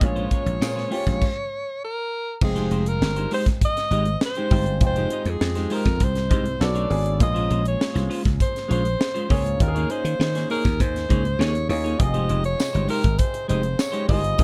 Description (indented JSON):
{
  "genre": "polished 1980s jazz-funk pop",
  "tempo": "100 BPM",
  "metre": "4/4",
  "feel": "straight",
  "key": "F minor",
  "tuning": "A4 = 440 Hz",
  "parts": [
    { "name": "breathy alto saxophone", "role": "melody", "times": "0.0-14.4 s", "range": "Ab4 to Eb5", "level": "-29 LUFS", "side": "equal", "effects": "none" },
    { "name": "warm grand piano", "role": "accompaniment", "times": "0.0-14.4 s", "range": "C3 to G5", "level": "-34 LUFS", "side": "equal", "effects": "lush chorus" },
    { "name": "clean electric guitar", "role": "riff", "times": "0.0-14.4 s", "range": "Ab3 to Eb5", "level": "-32 LUFS", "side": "equal", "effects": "analog chorus" },
    { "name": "dry thumbed slap bass", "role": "bass", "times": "0.0-14.4 s", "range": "F1 to Eb3", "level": "-26 LUFS", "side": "equal", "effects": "none" },
    { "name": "crisp fusion drum kit", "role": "drums", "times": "0.0-14.4 s", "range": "crash cymbal, hi-hat, kick drum, snare drum", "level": "-25 LUFS", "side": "equal", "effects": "none" },
    { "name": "tambourine", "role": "percussion", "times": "0.6-0.8, 12.6-13.9 s", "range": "none", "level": "-40 LUFS", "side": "equal", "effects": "none" }
  ],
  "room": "little or no reverb",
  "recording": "dark, warm production",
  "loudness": "-23 LUFS",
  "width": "mono",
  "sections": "0.0-2.4 A section; 2.4-14.4 B section",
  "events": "stop 1.2-2.4",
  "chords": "0.0 Bbm9; 2.4 Fm9; 6.6 Bm9; 7.2 Bbm9; 9.6 Eb7sus4; 12.0 Fm9"
}